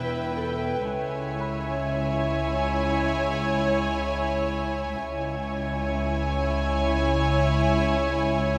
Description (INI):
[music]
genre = cinematic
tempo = free time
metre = none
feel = none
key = unclear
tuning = A4 = 439 Hz
[part]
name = warm chamber violin section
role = melody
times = 0.0-8.6 s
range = G5 to G#5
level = -35 LUFS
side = equal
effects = none
[part]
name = warm chamber violin section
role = second line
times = 0.0-8.6 s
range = B4 to C#5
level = -32 LUFS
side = equal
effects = none
[part]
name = warm chamber viola section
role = accompaniment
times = 0.0-8.6 s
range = E4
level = -34 LUFS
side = equal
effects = none
[part]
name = evolving wavetable pad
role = sustained chords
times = 0.0-8.6 s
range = B4 to G#5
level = -34 LUFS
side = equal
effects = chorus, built-in reverb
[part]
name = dark studio double bass section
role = bass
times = 0.0-8.6 s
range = E1 to C#2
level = -32 LUFS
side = equal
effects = none
[part]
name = warm studio cello section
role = bass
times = 0.0-8.6 s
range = C#2 to E2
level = -33 LUFS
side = equal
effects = none
[part]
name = concert harp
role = texture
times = 0.0-5.3 s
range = A4 to B5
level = -39 LUFS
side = equal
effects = none
[sound]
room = moderate scoring stage reverb, RT60 2.0 s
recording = none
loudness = -26 LUFS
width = mono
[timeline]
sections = 0.0-8.6 A section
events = none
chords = 0.0 Em; 0.9 C#m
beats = free time